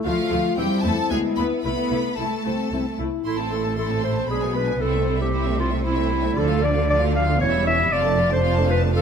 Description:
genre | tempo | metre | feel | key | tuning
quick classical-period movement for symphony orchestra | 115 BPM | 3/4 | straight | A minor | A4 = 440 Hz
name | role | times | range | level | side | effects
rich chamber viola section | accompaniment | 0.0-9.0 s | E3 to F4 | -29 LUFS | right 3 dB | none
clear French horn section | sustained chords | 0.0-3.3 s | A3 to F4 | -26 LUFS | left 6 dB | none
bright studio violin section | melody | 0.1-9.0 s | C5 to C6 | -32 LUFS | left 2 dB | none
rich chamber violin section | second line | 0.1-9.0 s | B3 to B4 | -30 LUFS | left 1 dB | none
rich chamber double bass section | bass | 0.1-9.0 s | E1 to E2 | -26 LUFS | right 2 dB | none
rich studio cello section | bass | 0.1-9.0 s | E2 to B3 | -27 LUFS | right 1 dB | none
warm clarinet | second line | 3.3-9.0 s | E4 to F5 | -23 LUFS | left 1 dB | none
room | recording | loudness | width
moderate scoring stage reverb, RT60 1.6 s | none | -19 LUFS | side -7 dB against mid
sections
0.0-3.2 A section; 3.2-9.0 A section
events
none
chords
0.1 Dm; 0.6 Am/E; 1.1 E7/D; 1.6 Am/C; 3.2 Am; 4.3 G#dim/B; 4.8 Am/C; 6.4 Dm; 7.4 C#dim/E; 7.9 Dm/F

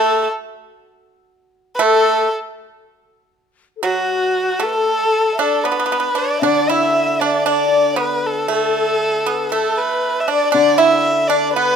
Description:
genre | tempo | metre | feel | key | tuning
chinese traditional, Chinese chamber ensemble | 59 BPM | 4/4 | rubato | D gong mode | A4 = 438 Hz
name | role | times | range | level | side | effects
warm erhu | melody | 0.0-11.8 s | F#4 to E5 | -18 LUFS | right 1 dB | none
pipa | second line | 0.0-11.8 s | F#3 to E4 | -20 LUFS | right 7 dB | none
xiao | second line | 0.0-11.8 s | F#4 to E5 | -21 LUFS | left 8 dB | none
hammered dulcimer | accompaniment | 6.4-11.8 s | D3 | -23 LUFS | left 7 dB | none
room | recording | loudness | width
light reverb | close, detailed microphones | -14 LUFS | side -7 dB against mid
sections
0.0-6.4 A section; 6.4-11.8 B section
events
none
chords
none

